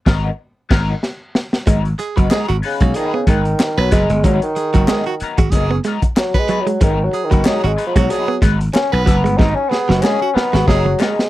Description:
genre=funk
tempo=93 BPM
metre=4/4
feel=swing 56% on 16ths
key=G# minor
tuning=A4 = 442 Hz
part: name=electric guitar at the edge of break-up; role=accompaniment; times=0.1-11.2 s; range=F#3 to B4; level=-25 LUFS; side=left 6 dB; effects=wah, wide subtle chorus
part: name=slap bass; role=bass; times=0.1-10.9 s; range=F#1 to B1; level=-17 LUFS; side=equal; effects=none
part: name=crunchy breakbeat drum kit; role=drums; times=0.1-11.3 s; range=crash cymbal, hi-hat, kick drum, snare drum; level=-16 LUFS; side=equal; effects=none
part: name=direct-recorded clean electric guitar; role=riff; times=1.7-11.1 s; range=F#3 to B3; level=-21 LUFS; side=right 4 dB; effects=none
part: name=breathy tenor saxophone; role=second line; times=2.0-10.9 s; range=F#4 to B4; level=-23 LUFS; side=right 6 dB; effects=none
part: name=group handclap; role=percussion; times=2.3-11.2 s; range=none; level=-31 LUFS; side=left 4 dB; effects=none
part: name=mellow bassoon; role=melody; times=2.7-11.3 s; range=C#3 to D#4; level=-19 LUFS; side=left 1 dB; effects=slapback echo
room=little or no reverb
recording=dry, close 1970s-style studio recording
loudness=-14 LUFS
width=side -15 dB against mid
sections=0.0-1.7 A section; 1.7-11.3 B section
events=band accent 0.0-1.7; drum fill 1.0-1.7, 9.4-11.3; bassoon solo 1.7-11.3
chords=0.0 G#m9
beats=0.38 1.03 | 1.67 2.31 2.96 3.60 | 4.24 4.88 5.53 6.17 | 6.81 7.46 8.10 8.75 | 9.39 10.04 10.68

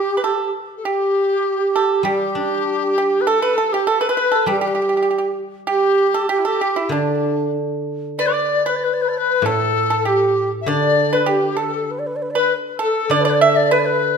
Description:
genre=chinese traditional, Chinese chamber ensemble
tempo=98 BPM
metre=4/4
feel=rubato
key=D zhi mode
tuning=A4 = 441 Hz
part: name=breathy mellow xiao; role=melody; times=0.0-14.2 s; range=D4 to E5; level=-20 LUFS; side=right 2 dB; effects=none
part: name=large dizi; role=second line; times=0.0-14.2 s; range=D4 to E5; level=-21 LUFS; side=left 5 dB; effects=none
part: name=pipa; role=second line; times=0.0-14.1 s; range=D4 to E5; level=-21 LUFS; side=right 6 dB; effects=none
part: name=guzheng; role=accompaniment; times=2.0-14.2 s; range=A2 to D4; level=-24 LUFS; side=equal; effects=none
room=moderate recital hall reverb, RT60 1.6 s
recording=none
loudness=-16 LUFS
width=side -6 dB against mid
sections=0.0-8.2 A section; 8.2-14.2 B section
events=none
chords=none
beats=0.23 | 0.85 1.46 2.06 2.66 | 3.27 3.87 4.48 5.08 | 5.69 6.30 6.92 7.55 | 8.19 8.82 9.44 10.06 | 10.68 11.28 11.89 12.51 | 13.11 13.72

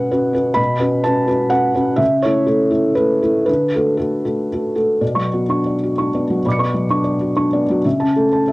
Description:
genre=neoclassical minimalist piano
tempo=115-130 BPM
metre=3/4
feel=rubato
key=B minor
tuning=A4 = 439 Hz
part: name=felt-muted upright piano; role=solo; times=0.0-8.5 s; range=B2 to C#7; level=-15 LUFS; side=equal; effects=none
room=moderate booth ambience, RT60 0.2 s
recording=home recording on cassette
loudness=-15 LUFS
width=side -22 dB against mid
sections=0.0-5.0 A section; 5.0-8.5 B section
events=none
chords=0.0 Bsus2; 2.0 A/C#; 3.5 D; 5.0 Bmadd9; 7.8 A/C#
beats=0.11 | 0.58 1.04 1.52 | 2.00 2.48 2.97 | 3.48 3.99 4.51 | 5.01 5.50 5.98 | 6.45 6.92 7.38 | 7.85 8.32

